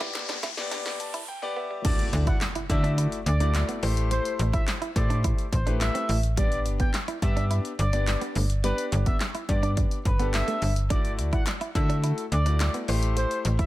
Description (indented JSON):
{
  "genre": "dance-pop",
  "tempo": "106 BPM",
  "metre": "4/4",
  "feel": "straight",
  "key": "G major",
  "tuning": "A4 = 441 Hz",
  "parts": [
    { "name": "clear grand piano", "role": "accompaniment", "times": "0.0-13.7 s", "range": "A3 to A5", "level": "-33 LUFS", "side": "left 4 dB", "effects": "sidechain pumping" },
    { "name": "direct-recorded clean electric guitar", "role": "riff", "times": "0.0-13.7 s", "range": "G3 to E4", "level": "-35 LUFS", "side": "right 4 dB", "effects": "analog chorus" },
    { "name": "punchy analog drum machine", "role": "drums", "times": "0.0-13.7 s", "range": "crash cymbal, handclaps, hi-hat, kick drum, snare drum", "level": "-28 LUFS", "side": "equal", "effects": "none" },
    { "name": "riser and impact", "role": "sound effects", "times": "0.0-4.1 s", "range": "none", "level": "-36 LUFS", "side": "equal", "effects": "none" },
    { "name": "group handclap", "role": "percussion", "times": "0.1-0.3, 11.5-12.7 s", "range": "none", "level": "-40 LUFS", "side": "left 7 dB", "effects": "none" },
    { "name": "expressive synth lead", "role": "melody", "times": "1.8-13.7 s", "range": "B4 to G5", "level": "-33 LUFS", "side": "equal", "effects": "chorus, sidechain pumping, digital delay" },
    { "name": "slap-like FM bass", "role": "bass", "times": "2.1-13.6 s", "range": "G1 to D3", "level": "-25 LUFS", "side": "equal", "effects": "sidechain pumping" }
  ],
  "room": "digital ambience",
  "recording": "high-pass filter",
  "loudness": "-23 LUFS",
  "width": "side -16 dB against mid",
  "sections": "0.0-1.8 A section; 1.8-13.7 B section",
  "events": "build-up 0.0-1.8; drum fill 0.0-1.3; riser 0.0-1.8; filter sweep 0.0-1.8; grand piano fill 0.7-1.8; drop 1.8-13.7; impact 1.8-4.1",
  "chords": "0.0 G; 1.8 Dadd9; 3.8 Am7; 6.4 G; 10.9 Dadd9; 12.9 Am7"
}